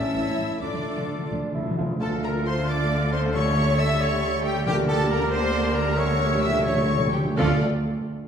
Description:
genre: quick classical-period movement for symphony orchestra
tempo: 82-93 BPM (dotted quarters)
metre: 6/8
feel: rubato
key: D minor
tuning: A4 = 440 Hz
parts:
  - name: warm studio violin section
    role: melody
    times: 0.0-7.6 s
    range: D5 to E6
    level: -33 LUFS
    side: left 4 dB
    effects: none
  - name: bright clarinet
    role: second line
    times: 0.0-7.6 s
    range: C#4 to Bb4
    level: -34 LUFS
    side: left 4 dB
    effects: none
  - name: rich studio violin section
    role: second line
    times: 0.0-7.6 s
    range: G4 to E5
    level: -32 LUFS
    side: left 2 dB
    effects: none
  - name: small flute group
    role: second line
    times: 0.0-7.6 s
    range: G4 to E5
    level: -32 LUFS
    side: equal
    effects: none
  - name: warm oboe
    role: second line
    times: 0.0-7.6 s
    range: D5 to F5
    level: -35 LUFS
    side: right 3 dB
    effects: none
  - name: dark bassoon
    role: accompaniment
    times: 0.0-7.6 s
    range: G3 to F4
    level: -35 LUFS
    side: right 1 dB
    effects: none
  - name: rich studio viola section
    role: accompaniment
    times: 0.0-7.6 s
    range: A3 to G4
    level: -33 LUFS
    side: right 2 dB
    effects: none
  - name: mellow French horn section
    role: sustained chords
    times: 0.0-7.6 s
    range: E3 to G4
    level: -32 LUFS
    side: left 3 dB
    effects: none
  - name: warm trumpet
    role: stabs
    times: 0.0-7.6 s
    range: F4 to E5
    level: -30 LUFS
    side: right 1 dB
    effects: none
  - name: rich studio double bass section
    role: bass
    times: 0.2-7.6 s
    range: A1 to D2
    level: -28 LUFS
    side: right 1 dB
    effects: none
  - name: warm studio cello section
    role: bass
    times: 0.2-7.6 s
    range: A2 to D3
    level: -32 LUFS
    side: right 1 dB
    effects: none
  - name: timpani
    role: percussion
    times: 0.6-7.6 s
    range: D3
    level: -29 LUFS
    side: equal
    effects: none
room: wet recital hall reverb, RT60 1.7 s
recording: heard from further back in the room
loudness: -21 LUFS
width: side -8 dB against mid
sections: 0.0-2.0 A section; 2.0-7.4 B section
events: timpani fill 0.6-2.0, 6.0-7.4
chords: 0.0 A; 0.6 Dm; 3.3 A7/D; 4.7 Gm/D; 6.0 A7/D; 7.4 Dm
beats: | 0.62 1.32 | 2.01 2.69 | 3.35 4.01 | 4.67 5.32 | 5.98 6.66 | 7.38

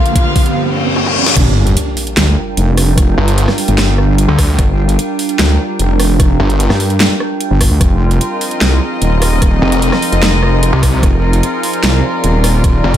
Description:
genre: heavy wobble dubstep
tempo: 149 BPM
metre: 4/4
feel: half-time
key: G phrygian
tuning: A4 = 437 Hz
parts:
  - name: warm chamber violin section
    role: melody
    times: 0.0-0.5 s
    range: F4 to F5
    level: -21 LUFS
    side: left 3 dB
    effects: dub echo
  - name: evolving wavetable pad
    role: sustained chords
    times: 0.1-13.0 s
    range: G2 to G5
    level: -19 LUFS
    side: right 2 dB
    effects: chorus, built-in reverb, sidechain pumping
  - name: riser, reverse cymbal and sub drop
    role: sound effects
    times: 0.0-3.0 s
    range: none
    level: -16 LUFS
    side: equal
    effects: none
  - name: warm studio string section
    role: texture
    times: 0.0-0.6, 7.8-13.0 s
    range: F4 to F5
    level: -19 LUFS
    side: left 2 dB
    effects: sidechain pumping
  - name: dubstep drum kit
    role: drums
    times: 0.1-13.0 s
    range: crash cymbal, handclaps, hi-hat, rim click, snare drum, toms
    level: -17 LUFS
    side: equal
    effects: high-pass filter on snare, studio reverb, high-pass filter on hats, high-pass filter on toms, high-pass filter on cymbals
  - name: electronic kick drum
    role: drums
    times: 0.2-13.0 s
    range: none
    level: -13 LUFS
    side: equal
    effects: overdrive, studio reverb
  - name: wobble bass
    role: bass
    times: 1.4-12.8 s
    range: Eb1 to G2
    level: -12 LUFS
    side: equal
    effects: chorus, overdrive
  - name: snarling distorted saw bass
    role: bass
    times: 3.2-6.7, 9.6-13.0 s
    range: F1 to D2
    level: -12 LUFS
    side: equal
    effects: distortion, overdrive
room: light reverb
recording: none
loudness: -10 LUFS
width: side -11 dB against mid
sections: 0.0-1.4 A section; 1.4-13.0 B section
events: build-up 0.0-1.4; drum fill 0.0-0.6, 1.0-1.4; riser 0.0-1.4; reverse cymbal 0.6-1.4; drop 1.4-13.0; impact 1.4-3.0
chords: 0.0 Gm7; 7.8 Fm7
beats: 0.16 0.56 0.96 | 1.36 1.77 2.17 2.57 | 2.98 3.38 3.78 4.18 | 4.59 4.99 5.39 5.79 | 6.20 6.60 7.00 7.41 | 7.81 8.21 8.61 9.02 | 9.42 9.82 10.22 10.63 | 11.03 11.43 11.84 12.24 | 12.64

